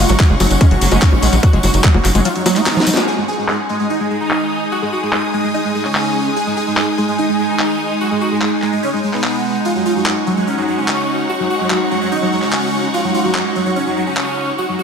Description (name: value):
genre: psychedelic trance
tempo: 146 BPM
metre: 4/4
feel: straight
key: unclear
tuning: A4 = 440 Hz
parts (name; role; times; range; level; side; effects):
- dense compressed supersaw; melody; 0.0-14.8 s; F#3 to G#4; -19 LUFS; equal; phaser, sidechain pumping, diffuse ambient delay
- evolving wavetable pad; sustained chords; 0.0-14.8 s; G#3 to D#4; -20 LUFS; right 1 dB; ensemble chorus, built-in reverb, sidechain pumping
- overdriven acid bass; riff; 0.0-2.9 s; E#3 to A#3; -21 LUFS; right 1 dB; distortion, auto-pan, sidechain pumping, diffuse ambient delay
- tight sequencer bass; bass; 0.0-2.2 s; F#1 to A#1; -15 LUFS; equal; none
- rich studio string section; texture; 0.0-14.8 s; C#4 to D#6; -23 LUFS; equal; sidechain pumping
- garage drum kit; drums; 0.1-14.3 s; bongos, handclaps, hi-hat, snare drum; -21 LUFS; left 1 dB; low-pass filter on hats, low-pass filter on perc, low-pass filter on snare
- tambourine; percussion; 0.1-3.1 s; none; -25 LUFS; left 1 dB; none
- electronic kick drum; drums; 0.2-1.9 s; none; -11 LUFS; equal; none
room: wet plate reverb, RT60 1.7 s, digital ambience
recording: dreamy mix soaked in reverb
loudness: -14 LUFS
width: side -6 dB against mid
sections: 0.0-3.1 A section; 3.1-14.8 B section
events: drop 0.0-3.1; drum fill 2.7-3.1; band accent 2.9; filter sweep on drum 3.1-14.8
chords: 0.0 F#5; 3.1 G#5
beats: 0.20 0.61 1.02 | 1.43 1.84 2.25 2.66 | 3.07 3.48 3.90 4.31 | 4.72 5.13 5.54 5.95 | 6.36 6.77 7.18 7.59 | 8.01 8.42 8.83 9.24 | 9.65 10.06 10.47 10.88 | 11.29 11.70 12.12 12.53 | 12.94 13.35 13.76 14.17 | 14.58